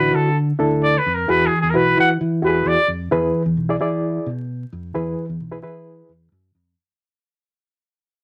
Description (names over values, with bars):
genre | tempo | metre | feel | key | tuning
uptempo 1960s-style soul | 131 BPM | 4/4 | straight | E mixolydian | A4 = 440 Hz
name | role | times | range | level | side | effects
clear trumpet | melody | 0.0-2.9 s | G#4 to F#5 | -20 LUFS | equal | none
reed electric piano | accompaniment | 0.0-6.1 s | D3 to D5 | -22 LUFS | equal | fast tremolo
fingered electric bass | bass | 0.0-6.7 s | B1 to E3 | -26 LUFS | equal | none
room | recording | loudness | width
moderate studio ambience, RT60 0.5 s | vinyl crackle | -19 LUFS | mono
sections
0.0-3.1 A section; 3.1-6.8 B section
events
trumpet solo 0.0-3.1; fade-out 3.1-6.8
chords
0.0 Dadd9; 1.3 Eadd9; 3.1 E